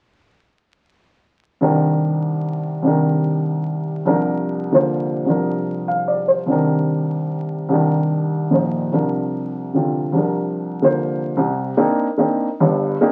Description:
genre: jazz.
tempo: 148 BPM.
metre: 3/4.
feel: swing 67% on 8ths.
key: C minor.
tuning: A4 = 443 Hz.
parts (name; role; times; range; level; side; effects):
warm upright piano; solo; 1.6-13.1 s; G1 to F5; -19 LUFS; equal; none.
room: wet studio reverb, RT60 0.5 s.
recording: very old 78 rpm record, vinyl crackle.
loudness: -19 LUFS.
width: mono.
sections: 1.6-11.4 A section; 11.4-13.1 B section.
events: none.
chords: 1.6 Cm9; 4.1 Bb/C; 6.5 Cm9; 8.9 Bb/C; 11.4 Cm9.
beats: | 1.61 2.02 2.43 | 2.84 3.24 3.65 | 4.06 4.46 4.87 | 5.28 5.68 6.09 | 6.50 6.90 7.31 | 7.72 8.12 8.53 | 8.94 9.34 9.75 | 10.16 10.56 10.97 | 11.38 11.78 12.19 | 12.59 13.00.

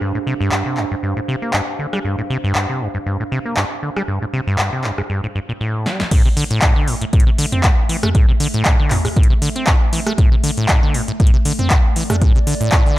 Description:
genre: acid house.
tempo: 118 BPM.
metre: 4/4.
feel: swing 54% on 16ths.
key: A minor.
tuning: A4 = 440 Hz.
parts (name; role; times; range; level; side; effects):
acid bass, saw; riff; 0.0-13.0 s; G1 to C4; -20 LUFS; equal; none.
warbly tape-like pad; texture; 0.0-13.0 s; A3 to F5; -28 LUFS; right 2 dB; chorus, built-in reverb, sidechain pumping.
electro analog drum machine; drums; 0.5-12.8 s; crash cymbal, handclaps, hi-hat, rim click, snare drum, toms; -21 LUFS; equal; none.
electronic kick drum; drums; 6.1-12.8 s; none; -14 LUFS; equal; none.
room: light reverb.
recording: none.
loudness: -15 LUFS.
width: side -16 dB against mid.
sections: 0.0-6.1 A section; 6.1-13.0 B section.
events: drum fill 5.9; drop 6.1-13.0.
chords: 0.0 G7(no3); 6.1 A5.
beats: | 0.01 0.52 1.03 1.54 | 2.05 2.56 3.06 3.57 | 4.08 4.59 5.10 5.61 | 6.11 6.62 7.13 7.64 | 8.15 8.66 9.16 9.67 | 10.18 10.69 11.20 11.71 | 12.22 12.72.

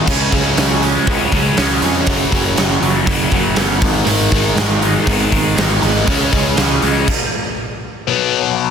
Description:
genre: quiet-loud alternative rock.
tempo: 120 BPM.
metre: 4/4.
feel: straight.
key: unclear.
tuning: A4 = 440 Hz.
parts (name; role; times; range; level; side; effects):
twelve-string electric guitar; arpeggios; 0.0-7.1 s; F#2 to D#4; -23 LUFS; right 8 dB; tremolo.
crunchy overdriven guitar; riff; 0.0-7.1 s; F#2 to C#4; -20 LUFS; right 9 dB; none.
overdriven electric guitar; riff; 0.0-8.7 s; F#2 to C#4; -18 LUFS; left 10 dB; phaser.
fuzz picked electric bass; bass; 0.1-7.0 s; F#1 to E#2; -20 LUFS; equal; overdrive.
big rock drum kit; drums; 0.1-7.2 s; crash cymbal, hi-hat, kick drum, snare drum; -17 LUFS; equal; soft clipping on kick.
room: light reverb.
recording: dense, heavily limited modern master.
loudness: -12 LUFS.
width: side -7 dB against mid.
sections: 0.1-8.1 A section.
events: stop 7.1-8.1.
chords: 0.1 C#sus4; 2.1 F#; 3.8 G#m; 6.1 C#sus2; 8.1 B5.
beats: | 0.07 0.57 1.08 1.58 | 2.08 2.58 3.08 3.58 | 4.08 4.58 5.08 5.58 | 6.08 6.58 7.08 7.58 | 8.08 8.57.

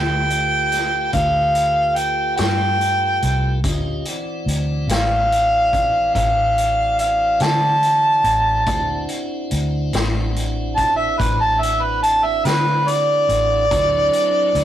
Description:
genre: slow blues.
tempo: 48 BPM (dotted quarters).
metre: 12/8.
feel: straight.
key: unclear.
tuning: A4 = 438 Hz.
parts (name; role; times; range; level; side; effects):
mellow harmonica; second line; 0.0-14.6 s; B4 to A5; -16 LUFS; right 1 dB; overdrive.
tonewheel organ; sustained chords; 0.0-14.6 s; E3 to Eb5; -28 LUFS; left 1 dB; slow rotary speaker, overdrive.
vintage muted fingered electric bass; bass; 0.0-14.6 s; A1 to D3; -23 LUFS; equal; none.
vintage drum kit; drums; 0.3-14.6 s; hi-hat, kick drum, snare drum; -26 LUFS; left 1 dB; none.
room: moderate small room reverb, RT60 0.5 s.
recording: rough rehearsal-room recording, warm saturation.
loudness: -16 LUFS.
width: side -11 dB against mid.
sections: 0.0-14.6 A section.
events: harmonica solo 0.0-14.6.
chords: 0.0 G9; 3.6 D9.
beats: 1.13 2.38 | 3.64 4.90 6.15 7.41 | 8.67 9.93 11.19 12.44 | 13.70.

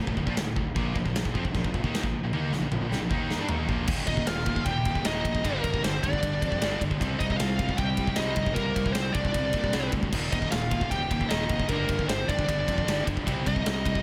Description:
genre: heavy metal.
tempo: 154 BPM.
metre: 4/4.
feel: straight.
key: unclear.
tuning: A4 = 442 Hz.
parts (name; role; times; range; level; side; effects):
distorted electric guitar; riff; 0.0-14.0 s; D2 to Eb4; -40 LUFS; equal; none.
heavy high-gain guitar; riff; 0.0-14.0 s; D2 to Eb4; -36 LUFS; equal; distortion.
scooped high-gain guitar; riff; 0.0-14.0 s; D2 to Eb4; -39 LUFS; equal; none.
fuzz fingered electric bass; bass; 0.0-14.0 s; D1 to Bb2; -35 LUFS; equal; overdrive.
big rock drum kit; drums; 0.1-14.0 s; china cymbal, crash cymbal, kick drum, ride cymbal, snare drum, toms; -32 LUFS; equal; none.
high-gain lead guitar; melody; 4.1-14.0 s; Bb4 to G5; -33 LUFS; equal; distortion.
high-gain lead guitar; second line; 4.1-14.0 s; Bb3 to G4; -40 LUFS; equal; distortion.
room: small room ambience.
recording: none.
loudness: -27 LUFS.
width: mono.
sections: 0.0-3.9 A section; 3.9-14.0 B section.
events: drum fill 2.3-3.9.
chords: 0.0 Dm; 0.8 Bb5; 3.9 Eb; 5.4 Gm; 7.0 Cm; 10.1 Eb; 11.7 Gm; 13.3 Cm.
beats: 0.37 | 0.76 1.15 1.54 1.93 | 2.33 2.72 3.11 3.50 | 3.89 4.28 4.67 5.06 | 5.45 5.84 6.23 6.62 | 7.01 7.40 7.79 8.18 | 8.57 8.96 9.35 9.74 | 10.13 10.53 10.92 11.31 | 11.70 12.09 12.48 12.88 | 13.27 13.66.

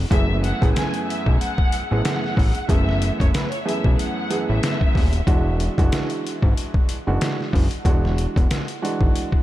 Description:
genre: hip hop, boom-bap hip-hop.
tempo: 93 BPM.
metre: 4/4.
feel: swing 58% on 16ths.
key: F# minor.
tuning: A4 = 440 Hz.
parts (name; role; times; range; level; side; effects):
fat analog bass; bass; 0.0-9.1 s; D#1 to B1; -21 LUFS; equal; none.
rich studio violin section; melody; 0.1-5.2 s; B4 to G#5; -29 LUFS; left 1 dB; high-pass filter, low-pass filter, tape echo.
warm baby grand piano; accompaniment; 0.1-9.4 s; F#2 to G#4; -25 LUFS; right 2 dB; cassette tape, high-pass filter, low-pass filter.
trip hop sampler-style drum kit; drums; 0.1-9.4 s; hi-hat, kick drum, snare drum; -20 LUFS; equal; none.
room: light reverb, digital ambience.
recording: none.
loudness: -18 LUFS.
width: side -14 dB against mid.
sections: 0.0-9.4 A section.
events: none.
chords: 0.1 F#m11; 5.3 E9.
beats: | 0.11 0.75 1.40 2.04 | 2.69 3.33 3.98 4.62 | 5.27 5.92 6.56 7.21 | 7.85 8.50 9.14.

